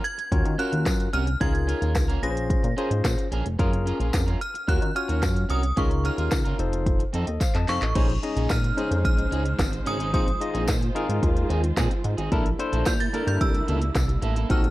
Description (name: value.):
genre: early-eighties boogie funk.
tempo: 110 BPM.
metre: 4/4.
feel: straight.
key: Bb minor.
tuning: A4 = 440 Hz.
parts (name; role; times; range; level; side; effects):
synth chime; melody; 0.0-14.7 s; Db6 to Bb6; -31 LUFS; right 1 dB; ensemble chorus, slapback echo.
electric guitar at the edge of break-up; riff; 0.0-14.7 s; Bb3 to Bb4; -34 LUFS; right 3 dB; lush chorus.
organic electronic drum kit; drums; 0.0-14.7 s; crash cymbal, handclaps, hi-hat, kick drum, snare drum; -25 LUFS; equal; none.
barky tine electric piano; accompaniment; 0.3-14.7 s; C4 to A5; -30 LUFS; left 3 dB; overdrive.
chorused synth bass; bass; 0.3-14.7 s; F1 to Eb3; -25 LUFS; equal; none.
tambourine; percussion; 0.9-14.1 s; none; -38 LUFS; left 4 dB; none.
warm symphonic string section; sustained chords; 8.0-14.7 s; Db3 to C5; -34 LUFS; right 2 dB; none.
room: little or no reverb.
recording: dark, warm production.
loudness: -22 LUFS.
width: side -17 dB against mid.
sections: 0.0-8.0 A section; 8.0-14.7 B section.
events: drum fill 7.4-8.0.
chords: 0.3 Ebm7; 1.4 Db6; 2.2 Bbm7; 3.6 Gbmaj7; 4.7 Ebm7; 5.8 Db6; 6.6 F7; 8.0 Bbm11; 10.1 Fm7/Bb; 12.3 C13/Bb.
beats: 0.32 0.86 | 1.41 1.96 2.50 3.05 | 3.59 4.14 4.68 5.23 | 5.77 6.32 6.87 7.41 | 7.96 8.50 9.05 9.59 | 10.14 10.68 11.23 11.77 | 12.32 12.87 13.41 13.96 | 14.50.